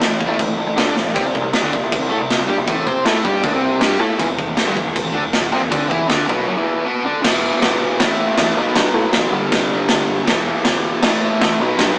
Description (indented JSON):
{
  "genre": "garage rock duo or trio",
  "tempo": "158 BPM",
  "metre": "4/4",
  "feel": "straight",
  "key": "E minor",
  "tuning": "A4 = 440 Hz",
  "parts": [
    { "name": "fuzz guitar", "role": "riff", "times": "0.0-12.0 s", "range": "E2 to C5", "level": "-22 LUFS", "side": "equal", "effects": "distortion" },
    { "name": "picked electric bass", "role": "bass", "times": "0.0-11.9 s", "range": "E1 to C3", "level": "-26 LUFS", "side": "equal", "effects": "tube saturation" },
    { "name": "raw garage drum kit", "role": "drums", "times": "0.0-11.9 s", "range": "crash cymbal, kick drum, snare drum", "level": "-20 LUFS", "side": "equal", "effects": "none" }
  ],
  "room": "light reverb",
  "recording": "rough rehearsal-room recording, warm saturation, small speaker sound",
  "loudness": "-18 LUFS",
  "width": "mono",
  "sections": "0.0-7.2 A section; 7.2-12.0 B section",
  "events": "drum fill 1.0; break 6.5-7.2",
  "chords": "0.0 A5; 1.2 C5; 4.2 E5; 7.2 Em; 8.0 A5; 8.6 B5; 9.3 G5; 10.3 Em; 11.0 A5"
}